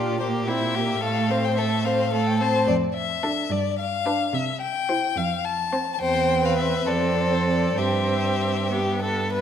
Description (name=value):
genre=quick classical-period movement for string quartet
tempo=64-73 BPM (dotted quarters)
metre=6/8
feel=rubato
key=C major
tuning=A4 = 440 Hz
part: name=rich violin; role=melody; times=0.0-9.3 s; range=C5 to A5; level=-26 LUFS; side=left 8 dB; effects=none
part: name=clear violin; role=second line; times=0.0-9.4 s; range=E4 to C5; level=-26 LUFS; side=left 2 dB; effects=none
part: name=rich viola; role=accompaniment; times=0.0-9.4 s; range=A3 to F4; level=-28 LUFS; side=right 3 dB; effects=none
part: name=rich cello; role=bass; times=0.0-9.4 s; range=E2 to C3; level=-27 LUFS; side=right 4 dB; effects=none
room=wet concert hall reverb, RT60 1.8 s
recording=none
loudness=-21 LUFS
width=side -8 dB against mid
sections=0.0-9.4 A section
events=none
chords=0.2 C7/Bb; 1.0 Am; 2.7 Dm/F; 3.5 G; 4.3 C; 5.2 F; 6.0 C/E; 6.9 Dm7/F; 7.8 C/G; 8.7 G